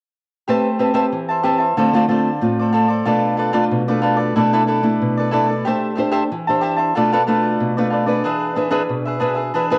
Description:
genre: samba.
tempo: 93 BPM.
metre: 4/4.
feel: straight.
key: A minor.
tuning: A4 = 444 Hz.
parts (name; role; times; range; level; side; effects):
cavaquinho; accompaniment; 0.5-9.8 s; D4 to A5; -21 LUFS; equal; cassette tape.
nylon-string guitar; accompaniment; 0.5-9.8 s; A2 to C5; -21 LUFS; equal; cassette tape.
room: wet spring reverb, RT60 1.8 s, small room ambience.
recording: home recording on cassette.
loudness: -18 LUFS.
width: mono.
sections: 0.5-9.8 A section.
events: none.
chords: 0.5 Am9; 1.8 Dm7; 3.1 Bm7b5; 4.4 E7sus4/B; 5.7 Am7; 7.0 Bm7b5; 8.2 E7.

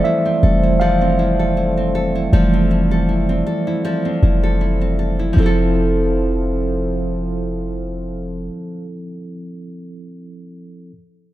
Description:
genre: R&B.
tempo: 79 BPM.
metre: 4/4.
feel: swing 54% on 16ths.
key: F major.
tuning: A4 = 440 Hz.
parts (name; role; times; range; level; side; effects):
mellow tine electric piano; accompaniment; 0.0-10.9 s; E3 to F5; -20 LUFS; right 2 dB; medium stereo tremolo.
mellow French horn section; sustained chords; 0.0-8.5 s; F3 to D5; -25 LUFS; left 2 dB; none.
nylon-string guitar; arpeggios; 0.0-9.0 s; F3 to A4; -24 LUFS; left 1 dB; none.
clean 808-style bass; bass; 0.4-8.5 s; F1; -19 LUFS; equal; none.
room: light reverb, small room reverb.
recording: none.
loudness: -15 LUFS.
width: side -15 dB against mid.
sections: 0.0-5.4 A section; 5.4-8.4 B section.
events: tine electric piano solo 0.0-5.4.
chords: 0.0 Fmaj7.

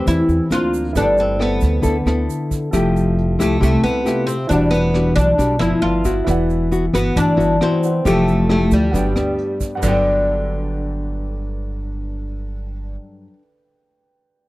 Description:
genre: bossa nova.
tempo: 135 BPM.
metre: 4/4.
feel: straight.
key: G major.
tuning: A4 = 440 Hz.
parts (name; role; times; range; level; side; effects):
oud; melody; 0.0-13.0 s; D3 to E#4; -20 LUFS; equal; none.
nylon-string guitar; accompaniment; 0.0-13.4 s; G2 to B4; -20 LUFS; left 2 dB; none.
warm grand piano; accompaniment; 0.0-14.5 s; C4 to F#6; -30 LUFS; right 4 dB; none.
upright bass; bass; 0.0-12.9 s; E1 to E2; -22 LUFS; right 1 dB; none.
vintage brush drum kit; drums; 0.1-9.9 s; crash cymbal, hi-hat, kick drum, rim click; -24 LUFS; right 1 dB; none.
egg shaker; percussion; 0.1-9.9 s; none; -37 LUFS; right 22 dB; none.
room: little or no reverb.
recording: dry, close 1970s-style studio recording.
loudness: -15 LUFS.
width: side -18 dB against mid.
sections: 0.0-9.8 A section; 9.8-13.4 B section.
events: none.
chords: 0.0 Am9; 0.5 D7alt; 1.0 G69; 2.7 Fmaj9; 4.5 Em9; 5.8 G13; 6.3 Cmaj9#11/E; 8.0 Fmaj9; 8.9 Gmaj7.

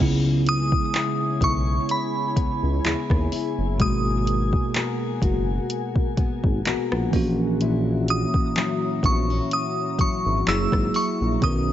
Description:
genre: contemporary R&B.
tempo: 63 BPM.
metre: 4/4.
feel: swing 54% on 16ths.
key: unclear.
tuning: A4 = 440 Hz.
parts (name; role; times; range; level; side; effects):
bell-like tine electric piano; accompaniment; 0.0-11.7 s; B2 to A#4; -26 LUFS; right 3 dB; medium stereo tremolo.
glassy FM pad; sustained chords; 0.0-11.7 s; E4 to A#5; -34 LUFS; left 2 dB; ensemble chorus, built-in reverb, sidechain pumping.
fingerpicked steel-string acoustic guitar; arpeggios; 0.0-11.7 s; A#2 to A#4; -30 LUFS; left 7 dB; tape echo.
smooth synth bass; bass; 0.0-11.7 s; F#1 to D#2; -25 LUFS; equal; none.
glassy synth bell; melody; 0.5-11.7 s; B5 to E6; -26 LUFS; equal; chorus, tape echo.
smooth R&B drum kit; drums; 0.5-11.7 s; handclaps, hi-hat, kick drum, rim click; -24 LUFS; equal; none.
room: digital ambience.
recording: nothing above 7.7 kHz.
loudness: -20 LUFS.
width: side -12 dB against mid.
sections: 0.0-11.7 A section.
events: none.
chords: 0.0 C#m7; 3.8 G#m9; 7.1 F#7/A#; 10.5 F#9.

